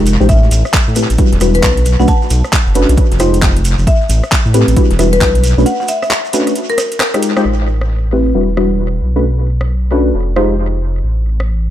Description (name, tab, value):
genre	UK garage, two-step garage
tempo	134 BPM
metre	4/4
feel	swing 62% on 16ths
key	A dorian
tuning	A4 = 440 Hz
part	deep mellow chord stab	stabs	0.0-10.6 s	G3 to C5	-15 LUFS	left 1 dB	chorus, dub echo
part	dark detuned saw bass	bass	0.0-11.7 s	E1 to A2	-13 LUFS	equal	tube saturation, sidechain pumping
part	garage drum kit	drums	0.1-11.5 s	handclaps, hi-hat, rim click	-19 LUFS	equal	tape echo
part	shekere	percussion	0.1-7.4 s	none	-27 LUFS	right 4 dB	tape echo
part	marimba with medium hard mallets	melody	0.3-7.0 s	Bb4 to A5	-19 LUFS	left 3 dB	tape echo
part	electronic kick drum	drums	0.3-5.3 s	none	-13 LUFS	equal	overdrive
room	light reverb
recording	echo-heavy mix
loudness	-10 LUFS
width	side -12 dB against mid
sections	0.0-7.5 A section; 7.5-11.7 B section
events	filter sweep on synth stab 0.0-7.5; break 5.7-7.5; drum fill 6.8-7.5; band accent 7.3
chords	0.3 Am7; 1.2 Em7; 1.9 Bm7; 3.0 Fm7; 3.9 Am7; 4.8 Em7; 5.4 Bm7; 6.6 Fm7; 7.5 Am7; 8.3 Em7; 9.0 Bm7; 10.1 Fm7; 11.0 N.C.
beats	| 0.29 0.74 1.19 1.63 | 2.08 2.53 2.98 3.42 | 3.87 4.32 4.77 5.21 | 5.66 6.11 6.56 7.01 | 7.45 7.90 8.35 8.80 | 9.24 9.69 10.14 10.59 | 11.04 11.48